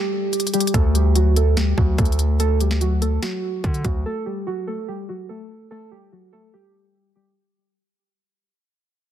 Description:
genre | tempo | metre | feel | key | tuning
hip hop, trap | 145 BPM | 4/4 | half-time | D major | A4 = 441 Hz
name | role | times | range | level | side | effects
muted felt-like synth keys | melody | 0.0-7.4 s | F#3 to A4 | -24 LUFS | right 1 dB | chorus, ping-pong delay
trap drum kit | drums | 0.3-3.9 s | hi-hat, kick drum, snare drum | -23 LUFS | equal | none
distorted 808-style bass | bass | 0.7-4.0 s | D2 to D3 | -18 LUFS | equal | distortion
room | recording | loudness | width
digital ambience | dense, heavily limited modern master | -18 LUFS | side -10 dB against mid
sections
0.7-7.4 A section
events
break 0.0-0.7; fade-out 0.7-7.4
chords
0.0 N.C.; 0.7 D; 4.1 F#m

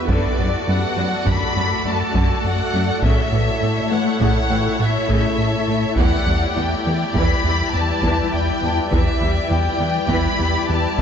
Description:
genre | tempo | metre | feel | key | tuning
cinematic, hybrid orchestral and electronic film score | 102 BPM | 5/4 | straight | E dorian | A4 = 442 Hz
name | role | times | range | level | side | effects
rich symphonic violin section | melody | 0.0-11.0 s | D5 to B5 | -24 LUFS | left 2 dB | none
clear symphonic violin section | second line | 0.0-11.0 s | G4 to D5 | -27 LUFS | left 2 dB | none
clear chamber viola section | accompaniment | 0.0-11.0 s | C#3 to F#4 | -27 LUFS | right 1 dB | none
shimmering ambient pad | sustained chords | 0.0-11.0 s | G3 to D5 | -25 LUFS | left 1 dB | chorus, built-in reverb
felt-muted upright piano | texture | 0.0-11.0 s | B4 to E6 | -35 LUFS | left 1 dB | none
rubbery square bass | riff | 0.1-11.0 s | E2 to A3 | -23 LUFS | left 2 dB | none
rich symphonic cello section | bass | 0.1-11.0 s | E2 to A2 | -25 LUFS | right 2 dB | none
taiko ensemble | drums | 0.1-11.0 s | none | -24 LUFS | right 1 dB | none
room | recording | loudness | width
wet scoring stage reverb, RT60 2.0 s | nothing above 7.7 kHz | -16 LUFS | side -8 dB against mid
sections
0.0-11.0 A section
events
none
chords
0.1 D/F#; 3.0 A; 6.0 Em7

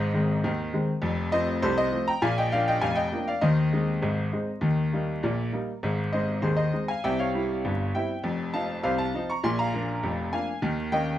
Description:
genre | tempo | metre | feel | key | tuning
ragtime piano | 100 BPM | 2/4 | straight | Ab major | A4 = 437 Hz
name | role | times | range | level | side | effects
bright grand piano | solo | 0.0-11.2 s | F1 to Db6 | -24 LUFS | left 1 dB | none
room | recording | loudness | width
moderate studio ambience, RT60 0.5 s | band playing live in one room, vinyl crackle | -24 LUFS | side -12 dB against mid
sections
0.0-11.2 A section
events
none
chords
0.0 Ab; 1.0 F; 2.2 Bb; 3.4 Ab/Eb; 4.6 Eb; 5.8 Ab; 7.0 C; 8.2 F5; 9.4 Bb7; 10.6 Eb5

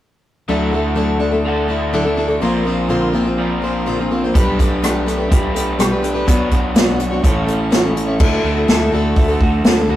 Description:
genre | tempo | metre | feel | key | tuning
folk rock and heartland rock | 124 BPM | 4/4 | straight | D major | A4 = 440 Hz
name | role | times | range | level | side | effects
picked plugged-in steel-string acoustic guitar | accompaniment | 0.5-10.0 s | A2 to C#5 | -19 LUFS | left 2 dB | none
crunchy overdriven guitar | riff | 0.5-10.0 s | A2 to B4 | -21 LUFS | right 1 dB | none
fingered electric bass | bass | 0.5-10.0 s | A1 to D2 | -22 LUFS | equal | none
unplugged drum kit | drums | 4.3-9.8 s | crash cymbal, hi-hat, kick drum, rim click, snare drum | -15 LUFS | equal | none
room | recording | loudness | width
moderate small room ambience, RT60 0.5 s | rough rehearsal-room recording, warm saturation | -14 LUFS | side -13 dB against mid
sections
0.5-8.2 A section; 8.2-10.0 B section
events
none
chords
0.5 Dadd9; 2.4 Bbadd9; 4.3 Gadd9/B; 6.3 Bmadd9; 7.2 A; 8.2 Dadd9

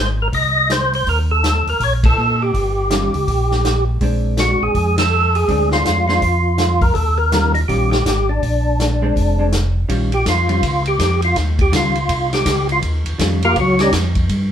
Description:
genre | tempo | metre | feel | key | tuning
soul jazz organ trio | 163 BPM | 4/4 | swing 63% on 8ths | unclear | A4 = 440 Hz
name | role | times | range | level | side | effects
percussive tonewheel organ | melody | 0.0-13.9 s | Gb3 to Eb5 | -17 LUFS | equal | slow rotary speaker, overdrive, chorus vibrato
mellow tonewheel organ | bass | 0.0-14.5 s | F1 to Bb2 | -18 LUFS | equal | overdrive, chorus vibrato, slow rotary speaker
vintage drum kit | drums | 0.3-14.4 s | hi-hat, kick drum, ride cymbal, snare drum | -22 LUFS | left 1 dB | none
vintage hollow-body jazz guitar | accompaniment | 2.9-13.4 s | Eb3 to F4 | -23 LUFS | equal | none
room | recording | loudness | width
moderate studio reverb, RT60 0.8 s | band playing live in one room | -14 LUFS | side -9 dB against mid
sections
0.0-9.9 A section; 9.9-14.5 B section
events
band accent 2.0, 4.9; tonewheel organ solo 9.9-14.5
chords
0.0 Ab; 1.1 Eb7; 4.0 Bb9; 7.0 Eb9; 8.4 Bb9; 9.9 Eb9

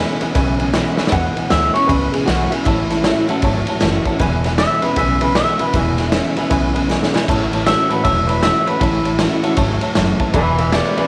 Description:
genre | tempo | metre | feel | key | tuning
rockabilly | 156 BPM | 4/4 | swing 63% on 8ths | E major | A4 = 438 Hz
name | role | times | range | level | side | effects
electric guitar through a small old amp | melody | 0.0-11.1 s | E4 to F#5 | -21 LUFS | equal | tape echo
honky-tonk upright piano | accompaniment | 0.0-11.1 s | B4 to A5 | -27 LUFS | equal | none
picked steel-string acoustic guitar | accompaniment | 0.0-11.1 s | E2 to F#4 | -27 LUFS | equal | none
electric guitar at the edge of break-up | riff | 0.0-11.1 s | E2 to F#3 | -24 LUFS | equal | none
upright bass | bass | 0.0-11.0 s | E1 to E2 | -24 LUFS | equal | none
raw garage drum kit | drums | 0.2-11.0 s | crash cymbal, kick drum, ride cymbal, snare drum | -22 LUFS | equal | none
room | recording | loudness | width
light reverb, small room reverb | none | -17 LUFS | mono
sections
0.0-1.1 A section; 1.1-11.1 B section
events
honky-tonk piano fill 0.4-1.1; drum fill 0.9, 6.9-7.3; clean electric guitar solo 1.1-11.1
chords
0.0 E6; 2.7 A6; 4.2 E6; 7.3 A6; 10.3 E6

